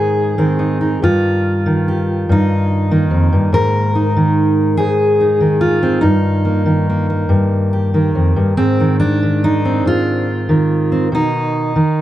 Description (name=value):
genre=folk, solo fingerstyle acoustic guitar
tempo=48 BPM (dotted quarters)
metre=6/8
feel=rubato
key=unclear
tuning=A4 = 439 Hz
part: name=fingerpicked steel-string acoustic guitar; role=solo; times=0.0-12.0 s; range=F2 to Bb4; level=-12 LUFS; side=equal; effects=none
room=moderate studio ambience, RT60 0.5 s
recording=dark, warm production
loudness=-13 LUFS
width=side -13 dB against mid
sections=0.0-8.6 A section; 8.6-12.0 B section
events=none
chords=0.0 Ab; 1.0 Eb/G; 3.5 Absus2; 6.0 Eb/G; 8.6 Ab; 11.1 B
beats=| 1.02 2.28 | 3.53 4.78 | 6.03 7.29 | 8.57 9.85 | 11.12